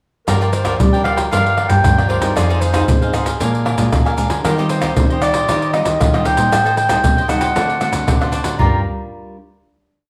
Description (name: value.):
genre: samba and choro.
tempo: 116 BPM.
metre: 4/4.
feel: straight.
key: G minor.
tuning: A4 = 440 Hz.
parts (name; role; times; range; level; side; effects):
growling clarinet; melody; 0.3-8.8 s; Bb4 to Bb5; -21 LUFS; equal; none.
cavaquinho; accompaniment; 0.3-8.8 s; D4 to Ab5; -26 LUFS; equal; none.
nylon-string guitar; accompaniment; 0.3-9.4 s; G2 to Bb4; -28 LUFS; equal; none.
nylon-string guitar; bass; 0.3-8.8 s; F2 to G3; -22 LUFS; equal; none.
maracas, surdo, pandeiro and tamborim; percussion; 0.3-8.7 s; none; -20 LUFS; equal; none.
room: moderate large studio reverb, RT60 0.8 s.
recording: band playing live in one room.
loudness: -16 LUFS.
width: mono.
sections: 0.3-8.6 A section; 8.6-10.1 final chord.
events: none.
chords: 0.3 Gm7; 2.4 Fm7; 3.4 Bb7; 4.4 Eb69; 6.5 Am7b5; 7.6 D7; 8.6 Gm7.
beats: | 0.28 0.80 1.32 1.84 | 2.37 2.89 3.41 3.93 | 4.45 4.97 5.49 6.00 | 6.52 7.04 7.56 8.07 | 8.59 9.11.